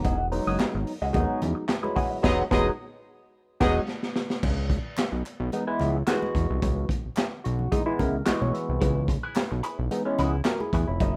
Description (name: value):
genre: funk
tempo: 110 BPM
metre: 4/4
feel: straight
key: C# minor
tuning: A4 = 439 Hz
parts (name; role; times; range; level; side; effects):
- clean electric guitar; accompaniment; 0.0-3.8, 8.8-11.2 s; E4 to D#5; -34 LUFS; equal; wah, plate reverb
- barky tine electric piano; stabs; 0.0-11.1 s; D#3 to E5; -30 LUFS; equal; overdrive, phaser
- fat analog bass; bass; 0.0-11.2 s; E1 to E2; -30 LUFS; equal; none
- crunchy breakbeat drum kit; drums; 0.0-11.1 s; crash cymbal, handclaps, hi-hat, kick drum, snare drum; -30 LUFS; equal; none
- congas; percussion; 0.0-11.1 s; none; -41 LUFS; equal; none
- warm horn section; second line; 2.2-3.8 s; B3 to D#5; -34 LUFS; equal; none
- group handclap; percussion; 5.0-10.6 s; none; -46 LUFS; equal; none
room: light reverb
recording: rough home demo mix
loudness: -26 LUFS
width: mono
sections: 0.0-4.4 A section; 4.4-11.2 B section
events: silent gap 2.2-4.4; band accent 2.2-4.4; drum fill 3.9-4.4; tine electric piano fill 7.2-8.8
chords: 0.0 Emaj9; 4.4 C#m7